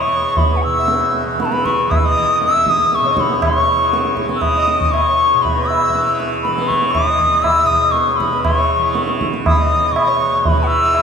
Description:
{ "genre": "indian classical, Hindustani", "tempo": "119 BPM", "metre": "5/4", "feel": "straight", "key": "unclear", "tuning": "A4 = 440 Hz", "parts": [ { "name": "bright reedy bansuri", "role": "melody", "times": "0.0-11.0 s", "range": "F#5 to E6", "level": "-15 LUFS", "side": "left 1 dB", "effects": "none" }, { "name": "hand-pumped harmonium", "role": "second line", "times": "0.0-11.0 s", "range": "B4 to E5", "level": "-24 LUFS", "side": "left 1 dB", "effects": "none" }, { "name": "tanpura", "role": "drone", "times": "0.0-11.0 s", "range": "E2 to E3", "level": "-24 LUFS", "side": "right 2 dB", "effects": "none" }, { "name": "tabla", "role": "percussion", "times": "0.4-11.0 s", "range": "none", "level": "-19 LUFS", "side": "right 1 dB", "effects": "none" } ], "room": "wet cathedral reverb, RT60 5.7 s", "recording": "in a vast, echoing space", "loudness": "-13 LUFS", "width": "side -6 dB against mid", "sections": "0.0-11.0 A section", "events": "none", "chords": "none", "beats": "0.38 | 0.89 1.40 1.90 2.41 2.92 | 3.42 3.93 4.43 4.93 5.44 | 5.94 6.44 6.95 7.45 7.95 | 8.45 8.95 9.45 9.95 10.44 | 10.94" }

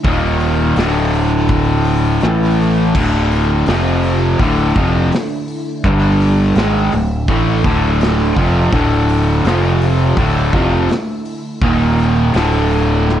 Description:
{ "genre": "stoner and doom metal", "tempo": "83 BPM", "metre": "4/4", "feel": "straight", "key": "D minor", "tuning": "A4 = 440 Hz", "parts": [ { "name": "ensemble organ-string", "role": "sustained chords", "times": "0.0-13.2 s", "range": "D3 to E5", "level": "-25 LUFS", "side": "equal", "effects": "none" }, { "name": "distorted electric guitar", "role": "riff", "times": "0.0-13.2 s", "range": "D2 to A3", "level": "-19 LUFS", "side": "equal", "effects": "overdrive" }, { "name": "fuzz guitar", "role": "riff", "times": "0.0-13.2 s", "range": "D2 to A3", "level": "-16 LUFS", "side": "equal", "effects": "distortion" }, { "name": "growling fingered electric bass", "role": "bass", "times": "0.0-13.2 s", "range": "D1 to A1", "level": "-17 LUFS", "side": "equal", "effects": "overdrive" }, { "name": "big rock drum kit", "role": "drums", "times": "0.0-13.2 s", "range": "crash cymbal, hi-hat, kick drum, snare drum", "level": "-21 LUFS", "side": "equal", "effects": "none" } ], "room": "moderate small room reverb, RT60 0.6 s", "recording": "cassette tape, nothing above 11.0 kHz", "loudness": "-12 LUFS", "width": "side -10 dB against mid", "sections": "0.0-13.2 A section", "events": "none", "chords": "0.0 Eb5; 0.8 D5; 2.2 A5; 2.9 D5; 3.7 F5; 4.4 Dm; 5.8 G5; 6.6 Dm; 9.5 F5; 10.2 Dm; 11.6 Eb5; 12.3 D5", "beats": "| 0.05 0.77 1.50 2.22 | 2.94 3.67 4.39 5.12 | 5.84 6.56 7.29 8.01 | 8.73 9.45 10.18 10.90 | 11.62 12.34 13.06" }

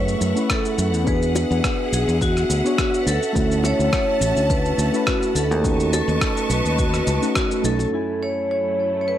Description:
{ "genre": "sunset chillout", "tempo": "105 BPM", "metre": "4/4", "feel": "swing 54% on 16ths", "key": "F# minor", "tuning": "A4 = 440 Hz", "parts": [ { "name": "vibraphone with hard mallets", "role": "melody", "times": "0.0-9.2 s", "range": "F#4 to C#5", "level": "-23 LUFS", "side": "equal", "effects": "tape echo" }, { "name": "soft electric-piano-like synth keys", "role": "accompaniment", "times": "0.0-9.2 s", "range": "F#2 to G#5", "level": "-25 LUFS", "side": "equal", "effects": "chorus, auto-pan" }, { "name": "bright symphonic string section", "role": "sustained chords", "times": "0.0-9.2 s", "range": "F#2 to C#6", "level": "-28 LUFS", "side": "equal", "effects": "low-pass filter" }, { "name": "fingered electric bass", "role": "bass", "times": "0.0-7.8 s", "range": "A1 to F#2", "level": "-22 LUFS", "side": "equal", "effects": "none" }, { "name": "electronic shaker and rim click", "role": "drums", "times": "0.1-7.9 s", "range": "none", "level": "-27 LUFS", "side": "equal", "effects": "low-pass filter on perc, low-pass filter on snare, low-pass filter on room" }, { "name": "electronic kick drum", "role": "drums", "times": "0.5-7.5 s", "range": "none", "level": "-25 LUFS", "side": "equal", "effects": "overdrive" }, { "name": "bongos", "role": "percussion", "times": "1.4-7.9 s", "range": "none", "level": "-27 LUFS", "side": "left 5 dB", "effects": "none" } ], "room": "light reverb, studio reverb", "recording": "dry, gritty hardware recording", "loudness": "-18 LUFS", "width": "side -11 dB against mid", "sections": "0.0-7.9 A section; 7.9-9.2 B section", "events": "band accent 7.4", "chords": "0.0 F#m7; 1.1 E9; 3.1 Dmaj9; 5.6 B9; 7.9 F#m7", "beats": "0.50 | 1.07 1.64 2.21 2.78 | 3.35 3.93 4.50 5.07 | 5.64 6.21 6.78 7.36 | 7.93 8.50 9.07" }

